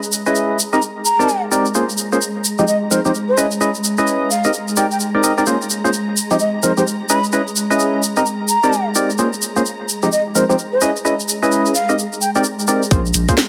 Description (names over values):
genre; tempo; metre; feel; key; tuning
UK garage, two-step garage; 129 BPM; 4/4; swing 61% on 16ths; Bb minor; A4 = 440 Hz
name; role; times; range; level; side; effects
soft string machine; sustained chords; 0.0-13.5 s; Ab3 to Bb5; -26 LUFS; equal; ensemble chorus, sidechain pumping
tube shaker; percussion; 0.0-13.5 s; none; -24 LUFS; equal; none
percussive organ stab; stabs; 0.3-13.3 s; F3 to Eb5; -20 LUFS; equal; lush chorus, digital delay
baroque flute; melody; 0.7-12.4 s; C5 to Cb6; -21 LUFS; equal; digital delay
saturated sub bass; bass; 12.9-13.3 s; Bb1; -20 LUFS; equal; none
electronic kick drum; drums; 12.9-13.4 s; none; -18 LUFS; equal; none
garage drum kit; drums; 12.9-13.5 s; hi-hat, snare drum; -18 LUFS; equal; none
room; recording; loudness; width
moderate studio reverb, RT60 0.6 s; none; -17 LUFS; mono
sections
0.0-12.9 A section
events
none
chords
0.0 Dbm9; 0.6 Cm9; 1.7 Bbm9; 2.4 Fm9; 3.4 Dbm9; 4.3 Cm9; 5.5 Bbm9; 6.2 Fm9; 7.1 Dbm9; 8.0 Cm9; 9.2 Bbm9; 9.9 Fm9; 10.8 Dbm9; 11.7 Cm9; 12.9 Bbm9